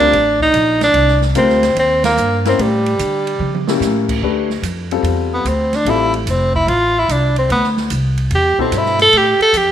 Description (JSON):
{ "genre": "modal jazz", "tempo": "147 BPM", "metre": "4/4", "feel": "swing 67% on 8ths", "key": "D dorian from 4.2 s", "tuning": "A4 = 440 Hz", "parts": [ { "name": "clear tenor saxophone", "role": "melody", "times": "0.0-9.7 s", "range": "G3 to A4", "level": "-13 LUFS", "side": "right 1 dB", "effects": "none" }, { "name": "warm baby grand piano", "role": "accompaniment", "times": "0.0-6.1, 8.6-9.1 s", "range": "B2 to C5", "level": "-20 LUFS", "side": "left 9 dB", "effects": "none" }, { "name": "upright bass", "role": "bass", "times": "0.0-9.7 s", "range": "F1 to D3", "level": "-19 LUFS", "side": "equal", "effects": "none" }, { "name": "open jazz drum kit", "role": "drums", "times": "0.0-9.7 s", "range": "crash cymbal, hi-hat, kick drum, ride cymbal, snare drum, toms", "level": "-26 LUFS", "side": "right 6 dB", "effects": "none" } ], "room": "moderate echo chamber reverb, RT60 1.5 s, small room ambience", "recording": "1960s-style stereo with parts hard left and right", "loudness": "-12 LUFS", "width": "side -10 dB against mid", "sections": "0.0-4.2 A section; 4.2-9.7 B section", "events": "band accent 2.0; drum fill 3.4-3.8; tenor saxophone solo 4.2-9.7", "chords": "0.0 Cm11; 2.6 A7b9; 4.2 Dm11", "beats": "0.13 0.54 | 0.95 1.36 1.76 2.17 | 2.58 2.99 3.40 3.81 | 4.22 4.63 5.04 5.45 | 5.86 6.27 6.67 7.08 | 7.49 7.90 8.31 8.72 | 9.13 9.54" }